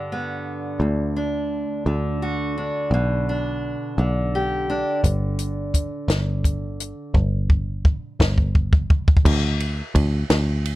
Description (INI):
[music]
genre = indie folk with a building arrangement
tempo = 57 BPM (dotted quarters)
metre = 6/8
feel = straight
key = unclear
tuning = A4 = 436 Hz
[part]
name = fingerpicked steel-string acoustic guitar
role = accompaniment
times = 0.0-7.1 s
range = D2 to G4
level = -26 LUFS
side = equal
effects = none
[part]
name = picked electric bass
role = bass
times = 0.8-10.8 s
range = G1 to D2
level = -23 LUFS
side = equal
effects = none
[part]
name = compact cocktail drum kit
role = drums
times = 5.0-10.8 s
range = crash cymbal, hi-hat, kick drum, ride cymbal, snare drum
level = -19 LUFS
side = equal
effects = none
[sound]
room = little or no reverb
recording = dark, warm production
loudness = -20 LUFS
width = side -17 dB against mid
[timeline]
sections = 0.8-9.2 A section; 9.2-10.8 B section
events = build-up 0.8-9.2; drum fill 5.0-9.2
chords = 0.0 G; 0.8 D; 2.9 Bm; 5.0 G5; 9.2 N.C.